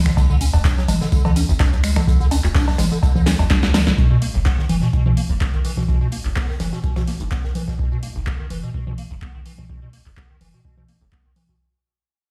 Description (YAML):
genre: acid house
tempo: 126 BPM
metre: 4/4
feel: swing 53% on 16ths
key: unclear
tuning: A4 = 436 Hz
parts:
  - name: round analog bass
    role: bass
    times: 0.0-11.6 s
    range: D1 to D2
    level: -24 LUFS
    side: equal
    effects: sidechain pumping
  - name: liquid acid bass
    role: riff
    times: 0.1-11.6 s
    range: B1 to D4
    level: -26 LUFS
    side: equal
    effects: phaser, tube saturation, ensemble chorus, sidechain pumping
  - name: deep reggae drum kit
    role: drums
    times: 0.1-7.8 s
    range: hi-hat, snare drum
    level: -38 LUFS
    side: equal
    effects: high-pass filter on hats, high-pass filter on snare, high-pass filter on room
  - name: electronic kick drum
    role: drums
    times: 0.1-11.6 s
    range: none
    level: -21 LUFS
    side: equal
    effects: none
  - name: punchy analog drum machine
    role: drums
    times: 0.1-11.5 s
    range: congas, cowbell, finger snaps, handclaps, hi-hat, snare drum, tambourine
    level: -25 LUFS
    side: equal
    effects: overdrive
room: light reverb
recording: played on a big sound system in a bare room, stone room reverb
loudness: -19 LUFS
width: mono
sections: 0.0-4.0 A section; 4.0-11.6 B section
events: drop 0.0-4.0; drum fill 3.3-4.0; fade-out 4.0-11.6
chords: 0.0 N.C.; 4.0 B5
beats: | 0.17 0.65 1.12 1.60 | 2.08 2.55 3.03 3.50 | 3.98 4.46 4.93 5.41 | 5.88 6.36 6.84 7.31 | 7.79 8.27 8.74 9.22 | 9.69 10.17 10.65 11.12